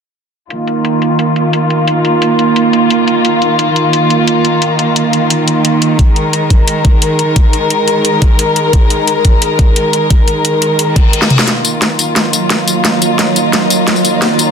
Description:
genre	dark technical drum and bass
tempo	175 BPM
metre	4/4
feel	straight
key	Eb minor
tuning	A4 = 440 Hz
part	dark chamber string section	sustained chords	0.5-14.5 s	Eb3 to Bb4	-11 LUFS	equal	sidechain pumping, low-pass filter
part	drum and bass drum kit	drums	0.5-14.5 s	hi-hat, snare drum, tambourine, toms	-14 LUFS	left 1 dB	overdrive, low-pass filter on hats, low-pass filter on snare, low-pass filter on toms, low-pass filter on perc
part	electronic kick drum	drums	6.0-11.0 s	none	-9 LUFS	equal	overdrive
part	reverse cymbal	sound effects	10.9-11.5 s	none	-20 LUFS	left 5 dB	none
part	ethereal airy pad	texture	12.0-14.5 s	Gb3 to Bb5	-16 LUFS	right 3 dB	ensemble chorus, built-in reverb, sidechain pumping
room	moderate digital room reverb, RT60 1.1 s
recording	dense, heavily limited modern master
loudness	-9 LUFS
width	side -6 dB against mid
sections	0.5-11.5 A section; 11.5-14.5 B section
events	filter sweep on drum 0.5-11.5; filter sweep on string section 0.5-11.5; reverse cymbal 10.9-11.5; drum fill 11.2, 11.5-14.5; build-up 11.5-14.5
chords	0.5 Eb5; 11.5 Ebm

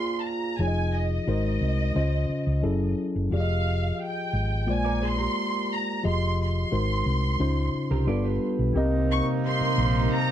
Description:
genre	soul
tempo	88 BPM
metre	4/4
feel	straight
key	F minor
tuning	A4 = 440 Hz
part	warm studio violin section	melody	0.0-10.3 s	Eb5 to Db6	-31 LUFS	right 2 dB	none
part	tine electric piano	accompaniment	0.0-10.3 s	C3 to Eb5	-28 LUFS	left 2 dB	none
part	electric guitar through a small old amp	riff	0.0-0.6, 4.8-8.7 s	F4 to D5	-32 LUFS	right 8 dB	none
part	hollow-body short-scale fingered electric bass	bass	0.6-10.1 s	F1 to Db2	-25 LUFS	equal	none
part	string machine, full ensemble	sustained chords	8.7-10.3 s	C3 to Bb4	-30 LUFS	left 1 dB	ensemble chorus
part	clear horn section	stabs	8.8-10.3 s	Bb3 to Eb4	-32 LUFS	right 6 dB	none
room	little or no reverb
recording	dry, close 1970s-style studio recording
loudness	-23 LUFS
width	side -10 dB against mid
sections	0.0-8.8 A section; 8.8-10.3 B section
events	none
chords	0.0 Bb7; 0.6 Fm7; 1.3 Ab7; 2.0 Dbmaj7; 2.6 Gbm7; 3.3 Fm7; 4.7 Bb7; 6.0 Fm7; 6.7 Ab7; 7.4 Dbmaj7; 8.1 G7; 8.8 Cm7

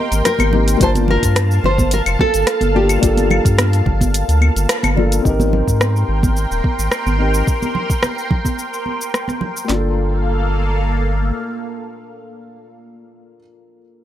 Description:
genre	sunset chillout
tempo	108 BPM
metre	4/4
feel	straight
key	G minor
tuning	A4 = 440 Hz
part	nylon-string guitar	melody	0.0-4.9 s	G4 to Eb5	-20 LUFS	equal	ping-pong delay
part	dark concert grand piano	accompaniment	0.0-14.0 s	Bb3 to A5	-22 LUFS	left 3 dB	auto-pan, ping-pong delay
part	lush unison pad	sustained chords	0.0-12.7 s	Bb3 to C6	-24 LUFS	equal	chorus, phaser
part	warm sub bass	bass	0.1-11.3 s	Eb1 to Ab2	-17 LUFS	equal	none
part	deep house drum kit	drums	0.1-9.7 s	claves, hi-hat, rim click, shaker	-20 LUFS	left 1 dB	overdrive
part	congas	percussion	0.4-9.5 s	none	-23 LUFS	right 3 dB	none
part	smooth R&B drum kit	drums	0.8-9.8 s	handclaps, kick drum, snare drum	-18 LUFS	equal	none
room	little or no reverb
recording	none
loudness	-14 LUFS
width	side -12 dB against mid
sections	0.0-5.2 A section; 5.2-9.7 B section; 9.7-11.9 C section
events	kick drops out 4.1-5.2; band accent 4.7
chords	0.0 Abmaj9; 0.8 Gm9; 5.2 Abmaj9; 9.7 Gm9

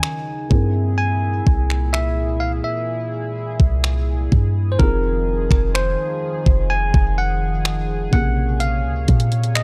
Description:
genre	contemporary R&B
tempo	63 BPM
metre	4/4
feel	straight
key	unclear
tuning	A4 = 438 Hz
part	barky tine electric piano	melody	0.0-9.6 s	Bb4 to Ab5	-27 LUFS	equal	digital delay
part	felt-muted upright piano	accompaniment	0.0-9.6 s	C3 to Db5	-31 LUFS	equal	none
part	chorused pulse-width pad	sustained chords	0.0-9.6 s	Bb2 to Db5	-31 LUFS	equal	sidechain pumping
part	crisp 8-bit digital drum machine	drums	0.0-9.6 s	finger snaps, hi-hat, kick drum	-19 LUFS	equal	none
part	warm 808-style bass	bass	0.5-9.6 s	F1 to Bb2	-22 LUFS	equal	none
room	little or no reverb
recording	dark, warm production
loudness	-19 LUFS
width	mono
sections	0.0-9.6 A section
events	none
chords	0.0 Ebm9; 0.5 C7b13; 4.8 Fm7; 8.1 Bbm9

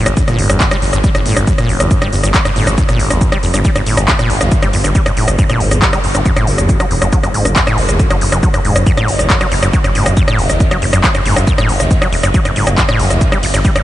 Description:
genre	driving peak-time techno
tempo	138 BPM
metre	4/4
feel	straight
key	unclear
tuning	A4 = 440 Hz
part	acid bass, saw	riff	0.0-13.8 s	F#1 to G3	-16 LUFS	equal	sidechain pumping, diffuse ambient delay
part	detuned saw bass	bass	0.0-13.6 s	E1 to G1	-17 LUFS	equal	sidechain pumping
part	techno drum kit	drums	0.1-13.8 s	handclaps, hi-hat, ride cymbal, rim click, shaker	-16 LUFS	equal	overdrive
part	electronic kick drum	drums	0.2-13.7 s	none	-14 LUFS	equal	overdrive
room	moderate huge ambient reverb, RT60 4.6 s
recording	dreamy mix soaked in reverb, nothing above 10.4 kHz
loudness	-10 LUFS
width	side -14 dB against mid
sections	0.0-13.8 A section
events	none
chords	none

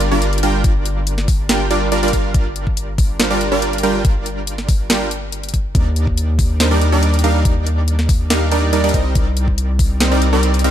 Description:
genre	future bass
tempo	141 BPM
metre	4/4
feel	half-time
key	G minor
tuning	A4 = 440 Hz
part	supersaw stab	riff	0.0-10.7 s	G3 to G5	-19 LUFS	right 2 dB	sidechain pumping, tape echo
part	long sustained 808-style bass	bass	0.0-10.7 s	G1 to Eb2	-18 LUFS	equal	sidechain pumping
part	trap drum kit	drums	0.0-10.7 s	hi-hat, snare drum	-22 LUFS	equal	none
part	electronic kick drum	drums	0.6-9.9 s	none	-16 LUFS	equal	none
room	little or no reverb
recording	none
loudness	-14 LUFS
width	side -10 dB against mid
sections	0.0-10.7 A section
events	none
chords	0.0 Gm7; 5.7 Ebmaj7; 8.9 Cm9

